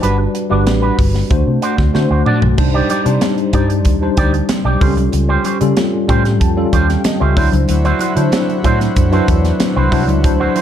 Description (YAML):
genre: polished 1980s jazz-funk pop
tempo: 94 BPM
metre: 4/4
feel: straight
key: unclear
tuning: A4 = 439 Hz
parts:
  - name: tine electric piano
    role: accompaniment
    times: 0.0-10.6 s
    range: F#3 to A5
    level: -17 LUFS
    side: left 2 dB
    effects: overdrive, fast stereo tremolo, ensemble chorus
  - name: electric guitar with an envelope filter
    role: riff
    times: 0.0-10.6 s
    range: C#4 to D5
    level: -21 LUFS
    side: right 4 dB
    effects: analog chorus
  - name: vintage muted fingered electric bass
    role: bass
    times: 0.0-10.5 s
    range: G1 to D3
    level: -16 LUFS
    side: equal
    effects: none
  - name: crisp fusion drum kit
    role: drums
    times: 0.0-10.6 s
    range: crash cymbal, hi-hat, kick drum, snare drum, toms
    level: -17 LUFS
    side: equal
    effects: none
  - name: congas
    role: percussion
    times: 2.6-10.6 s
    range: none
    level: -28 LUFS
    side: right 1 dB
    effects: none
  - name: accordion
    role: sustained chords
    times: 7.7-10.6 s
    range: D3 to F#4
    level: -25 LUFS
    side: left 2 dB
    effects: none
room: small room ambience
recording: dark, warm production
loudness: -12 LUFS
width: side -10 dB against mid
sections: 0.0-2.6 A section; 2.6-10.6 B section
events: drum fill 1.9-2.6; tine electric piano fill 5.8-7.7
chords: 0.0 Gmaj7; 1.3 D7; 2.6 Cmadd9; 4.8 A7alt; 7.4 D9